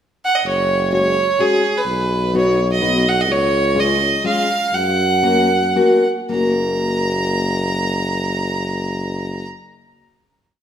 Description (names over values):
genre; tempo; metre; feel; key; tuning
alpine folk, alpine dance band; 105-128 BPM; 3/4; swing 54% on 8ths, rubato; F# major; A4 = 442 Hz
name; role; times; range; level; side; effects
clear fiddle; melody; 0.2-9.5 s; G#4 to A#5; -18 LUFS; right 2 dB; none
warm tuba; bass; 0.4-9.5 s; F#1 to F#2; -21 LUFS; left 1 dB; none
fingerpicked steel-string acoustic guitar; accompaniment; 0.9-9.5 s; G#3 to F#4; -20 LUFS; left 2 dB; none
room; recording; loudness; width
wet recital hall reverb, RT60 1.4 s; none; -15 LUFS; side -9 dB against mid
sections
0.0-0.4 pickup bar; 0.4-6.3 A section; 6.3-9.7 final chord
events
slowing down 3.3-6.3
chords
0.4 F#sus2; 1.9 B; 3.3 C#add9; 4.7 F#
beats
| 0.43 0.92 1.40 | 1.87 2.35 2.82 | 3.29 3.76 4.24 | 4.73 5.23 5.76 | 6.32 6.89 7.44 | 8.00 8.55 9.11